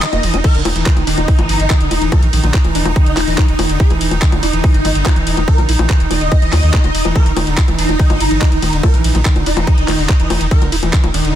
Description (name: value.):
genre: psychedelic trance.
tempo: 143 BPM.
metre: 4/4.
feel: straight.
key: unclear.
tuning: A4 = 439 Hz.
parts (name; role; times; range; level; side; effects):
swarming rave lead; melody; 0.0-11.4 s; Eb4 to Eb5; -21 LUFS; equal; chorus, phaser, vintage 12-bit sampler grit, sidechain pumping, dub echo.
evolving wavetable pad; sustained chords; 0.0-11.4 s; Eb4; -23 LUFS; right 4 dB; ensemble chorus, built-in reverb, sidechain pumping.
screaming distorted acid line; riff; 0.0-11.3 s; D3 to Fb4; -22 LUFS; equal; distortion, chorus, auto-pan, sidechain pumping, tape echo.
garage drum kit; drums; 0.0-11.3 s; bongos, crash cymbal, handclaps, hi-hat, ride cymbal; -20 LUFS; left 3 dB; soft clipping on snare.
round analog bass; bass; 0.1-11.3 s; Eb1 to Eb2; -17 LUFS; equal; none.
electronic kick drum; drums; 0.4-11.0 s; none; -12 LUFS; equal; none.
room: little or no reverb.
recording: dense, heavily limited modern master.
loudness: -11 LUFS.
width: side -11 dB against mid.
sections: 0.4-11.4 A section.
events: break 0.0-0.4; drop 0.4-11.4.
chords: 0.4 Eb5.